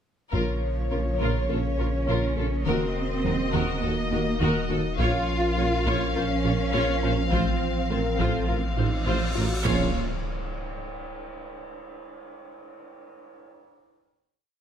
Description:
cinematic, hybrid orchestral and electronic film score; 103 BPM; 4/4; straight; Bb harmonic minor; A4 = 440 Hz
warm symphonic violin section; melody; 0.3-10.0 s; Db5 to F5; -33 LUFS; left 3 dB
rich symphonic violin section; second line; 0.3-10.0 s; A4 to Db5; -33 LUFS; left 2 dB
warm symphonic viola section; accompaniment; 0.3-10.0 s; F4 to Gb4; -34 LUFS; left 1 dB
dark French horn section; sustained chords; 0.3-9.9 s; Eb4 to Db5; -34 LUFS; left 7 dB
dark trombone section; sustained chords; 0.3-9.9 s; Db3 to Db4; -33 LUFS; right 5 dB
tight sequenced synth; arpeggios; 0.3-9.5 s; Eb3 to Bb4; -34 LUFS; left 2 dB; chorus, phaser
mellow tuba; bass; 0.3-9.9 s; A1 to Eb2; -33 LUFS; right 4 dB
punchy sub bass; bass; 0.3-10.0 s; Eb1 to Bb1; -30 LUFS; equal
rich symphonic double bass section; bass; 0.3-10.0 s; A1 to Eb2; -32 LUFS; right 3 dB
warm symphonic cello section; bass; 0.3-10.0 s; F3 to F4; -32 LUFS; right 2 dB
taiko ensemble; drums; 0.3-1.5, 5.0-8.7 s; -32 LUFS; left 1 dB
cymbal swell and impact; sound effects; 8.8-12.0 s; -35 LUFS; equal
light reverb; close, detailed microphones; -23 LUFS; side -8 dB against mid
0.3-9.7 theme; 9.7-12.0 final chord
cymbal swell 8.8-9.7; impact 9.7-12.0
0.3 Bbm; 2.7 Ebm; 5.0 Bbm; 7.3 F/A; 9.7 Bb5

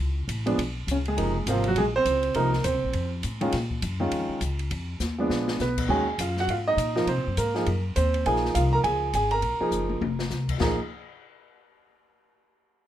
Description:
jazz piano trio; 204 BPM; 4/4; swing 60% on 8ths; Bb minor; A4 = 441 Hz
upright bass; bass; 0.0-10.8 s; F1 to C3; -28 LUFS; left 1 dB
open jazz drum kit; drums; 0.3-10.7 s; crash cymbal, hi-hat, kick drum, ride cymbal, snare drum, toms; -34 LUFS; left 2 dB
warm baby grand piano; melody; 0.5-10.8 s; C3 to Bb5; -25 LUFS; right 2 dB
light reverb; minimal, uncompressed stereo recording; -23 LUFS; side -11 dB against mid
0.0-5.9 A section; 5.9-10.6 B section; 10.6-11.8 C section
drum fill 5.0-5.6, 9.7-10.3
0.0 Db7(no3); 1.2 Gbmaj9; 2.4 Bbsus24; 2.9 F; 3.5 Bbm7; 4.7 F7(no3); 5.3 Bb7b9; 5.9 Ebmadd9; 7.1 Cm7b5; 8.2 Bbm9; 9.4 F7sus4; 10.6 Bb5

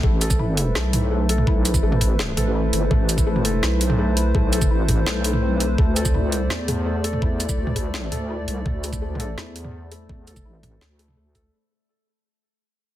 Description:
half-time drum and bass; 167 BPM; 4/4; half-time; A4 = 438 Hz
dark analog pad; sustained chords; 0.0-11.5 s; A3 to D5; -29 LUFS; equal; chorus, sidechain pumping
felt-muted upright piano; arpeggios; 0.0-11.6 s; A3 to A4; -28 LUFS; left 5 dB; vintage 12-bit sampler grit, digital delay
deep soft wobble bass; bass; 0.0-11.5 s; G1 to E2; -23 LUFS; equal; chorus, tube saturation
electronic kick drum; drums; 0.0-11.4 s; -21 LUFS; equal; overdrive, studio reverb
drum and bass drum kit; drums; 0.2-11.4 s; hi-hat, shaker, snare drum, toms; -26 LUFS; right 1 dB; overdrive, studio reverb
little or no reverb; dense, heavily limited modern master; -19 LUFS; side -13 dB against mid
0.0-11.5 A section
drop 0.0-11.5; fade-out 5.8-11.5
0.0 Amadd9; 5.8 D5

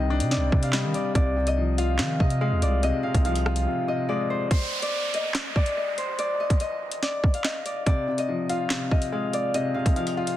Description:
hip hop, drill; 143 BPM; 4/4; half-time; A4 = 441 Hz
Celtic harp; melody; 0.0-10.4 s; C5 to F5; -28 LUFS; left 1 dB; ping-pong delay
felt-muted upright piano; accompaniment; 0.0-4.5, 7.9-10.4 s; C3 to F4; -27 LUFS; left 3 dB
long sustained 808-style bass; bass; 0.0-3.7 s; C2 to Eb3; -25 LUFS; equal
drill drum kit; drums; 0.2-10.4 s; handclaps, hi-hat, kick drum, rim click, snare drum; -24 LUFS; equal; vintage 12-bit sampler grit
downlifter and swell; sound effects; 4.5-10.4 s; -34 LUFS; right 3 dB
light reverb; dense, heavily limited modern master; -22 LUFS; side -13 dB against mid
0.0-4.5 A section; 4.5-10.4 B section
break 3.7-4.5
0.0 Cmadd9; 1.2 Fm/C; 4.5 N.C.; 7.9 Fm/C

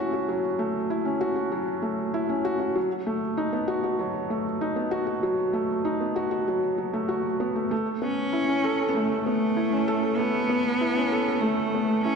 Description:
electronica; 97 BPM; 4/4; straight; A lydian; A4 = 440 Hz
felt-muted upright piano; riff; 0.0-12.2 s; F#3 to A4; -25 LUFS; equal; digital delay
rich cello; melody; 8.0-12.2 s; A3 to C#4; -25 LUFS; equal
wet scoring stage reverb, RT60 1.6 s; -24 LUFS; side -5 dB against mid
0.0-12.2 A section
0.0 F#m7; 2.8 B7; 7.7 Aadd9

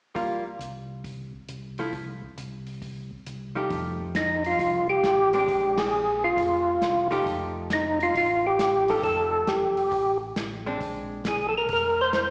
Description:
soul jazz organ trio; 135 BPM; 4/4; swing 66% on 8ths; F mixolydian from 3.7 s; A4 = 440 Hz
archtop guitar, miked and amplified; accompaniment; 0.1-11.2 s; F3 to G4; -29 LUFS; equal; slapback echo
warm soul drum kit; drums; 0.2-12.3 s; hi-hat, kick drum, ride cymbal, snare drum; -34 LUFS; equal
mellow tonewheel organ; bass; 0.6-12.3 s; F1 to F2; -37 LUFS; equal; slow rotary speaker
percussive tonewheel organ; melody; 4.2-12.3 s; Eb4 to C5; -22 LUFS; equal; slow rotary speaker, chorus vibrato, slapback echo
moderate plate reverb, RT60 1.3 s, small room ambience; live gig heard through the venue's PA, recital hall reverb, small speaker sound; -22 LUFS; side -37 dB against mid
0.2-3.7 A section; 3.7-12.3 B section
band accent 5.7
0.2 C7sus4; 1.9 N.C.; 3.7 F9; 5.5 Bb9; 7.3 F9; 10.8 Bb9

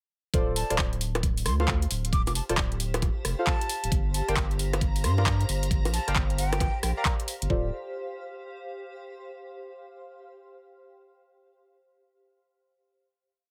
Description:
UK garage, two-step garage; 134 BPM; 4/4; swing 63% on 16ths; D minor; A4 = 441 Hz
deep mellow chord stab; stabs; 0.3-7.7 s; F4 to Bb5; -35 LUFS; equal; chorus, vintage 12-bit sampler grit, tape echo
saturated sub bass; bass; 0.3-7.7 s; D1 to G2; -30 LUFS; equal
electronic kick drum; drums; 0.3-7.6 s; -30 LUFS; equal
garage drum kit; drums; 0.3-7.5 s; bongos, handclaps, hi-hat, rim click; -33 LUFS; equal
granular cloud pad; texture; 2.0-9.3 s; G4 to F5; -43 LUFS; equal; built-in reverb, sidechain pumping
breathy mellow silver concert flute; melody; 0.6-7.0 s; G5 to D6; -38 LUFS; equal; vintage 12-bit sampler grit, tape echo
soft string machine; sustained chords; 3.9-7.5 s; Bb5; -46 LUFS; equal; phaser, ensemble chorus, sidechain pumping
little or no reverb; -27 LUFS; mono
0.3-7.5 drop; 7.5-9.3 final chord
drop 0.3-7.5
0.3 Dm7; 3.9 Gm7; 7.5 Dm7

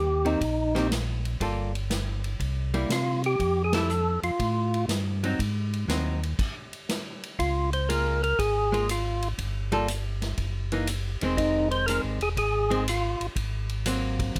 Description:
soul jazz organ trio; 120 BPM; 4/4; swing 68% on 8ths; Db major from 7.4 s; A4 = 439 Hz
percussive tonewheel organ; melody; 0.0-13.3 s; Eb4 to C5; -29 LUFS; equal; slow rotary speaker, overdrive
mellow tonewheel organ; bass; 0.0-14.4 s; Fb1 to C3; -31 LUFS; equal; chorus vibrato, slow rotary speaker
archtop guitar, miked and amplified; accompaniment; 0.2-14.4 s; Eb3 to A4; -31 LUFS; equal
swinging big-band drum kit; drums; 0.3-14.4 s; crash cymbal, hi-hat, kick drum, ride cymbal, snare drum; -36 LUFS; equal
little or no reverb; close, detailed microphones; -27 LUFS; mono
0.0-7.4 A section; 7.4-14.4 B section
band accent 3.6; stop 6.4-7.4
0.0 Eb6; 1.4 Gm9; 2.4 C7; 3.4 Fadd9; 5.4 Ab7; 7.4 Db6; 9.4 Gm9; 10.4 Gb13; 11.4 Fm7; 13.4 Ab9

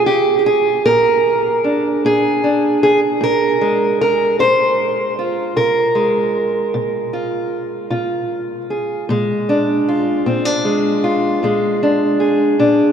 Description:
acoustic country blues, solo or duo; 51 BPM (dotted quarters); 12/8; straight; Bb mixolydian; A4 = 440 Hz
fingerpicked steel-string acoustic guitar; solo; 0.0-12.9 s; Bb2 to C5; -14 LUFS; right 1 dB
wet cathedral reverb, RT60 5.8 s; recorded in a church or concert hall; -14 LUFS; side -8 dB against mid
0.0-12.9 A section
0.0 Bb7

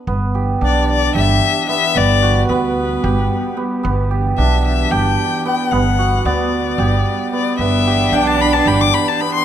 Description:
contemporary instrumental, chamber music in an uneven meter; 224 BPM (eighths); 7/8; straight; A4 = 440 Hz
cimbalom; arpeggios; 0.0-9.4 s; B3 to A4; -19 LUFS; right 4 dB
glassy FM pad; sustained chords; 0.1-9.4 s; E3 to B4; -27 LUFS; equal; ensemble chorus, built-in reverb
upright bass; bass; 0.1-8.9 s; G1 to D2; -18 LUFS; right 1 dB
dark violin; melody; 0.6-9.4 s; B4 to D6; -18 LUFS; left 9 dB
dark cello; second line; 7.6-9.4 s; D4; -20 LUFS; right 4 dB
light reverb; close, detailed microphones; -14 LUFS; side -10 dB against mid
0.1-9.4 A section
0.1 Em7/G; 2.0 Gmaj7; 3.8 Em7/G; 5.7 Gmaj7; 7.6 Em7/G

